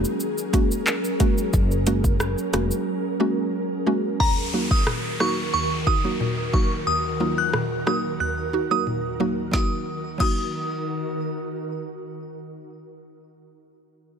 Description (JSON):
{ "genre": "dancehall", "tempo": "90 BPM", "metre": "4/4", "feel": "straight", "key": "Eb minor", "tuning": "A4 = 443 Hz", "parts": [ { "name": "ethereal airy pad", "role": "sustained chords", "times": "0.0-12.5 s", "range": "Eb2 to Bb4", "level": "-28 LUFS", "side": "equal", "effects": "ensemble chorus, built-in reverb, sidechain pumping" }, { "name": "woody fretless electric bass", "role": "bass", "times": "0.0-2.7 s", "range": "F1 to Gb1", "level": "-25 LUFS", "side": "equal", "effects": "ensemble chorus" }, { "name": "afro-pop drum kit", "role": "drums", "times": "0.0-10.4 s", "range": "crash cymbal, handclaps, hi-hat, kick drum, rim click, shaker, snare drum", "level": "-23 LUFS", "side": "equal", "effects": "overdrive" }, { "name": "mallet-like synth pluck", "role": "accompaniment", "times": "0.5-13.2 s", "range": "Eb2 to Gb4", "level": "-26 LUFS", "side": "right 1 dB", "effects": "chorus" }, { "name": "glassy synth bell", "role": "melody", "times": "4.2-11.5 s", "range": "Bb5 to Gb6", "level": "-26 LUFS", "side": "equal", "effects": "chorus, phaser, digital delay" }, { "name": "downlifter", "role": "sound effects", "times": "4.2-9.5 s", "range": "none", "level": "-34 LUFS", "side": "left 1 dB", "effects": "none" } ], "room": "light reverb, digital ambience", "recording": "none", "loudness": "-21 LUFS", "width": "side -7 dB against mid", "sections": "0.0-4.2 A section; 4.2-9.5 B section; 9.5-12.2 C section", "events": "break 2.9-4.2; kick muted 8.2-9.5", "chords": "0.0 Gbadd9; 4.2 Ebm" }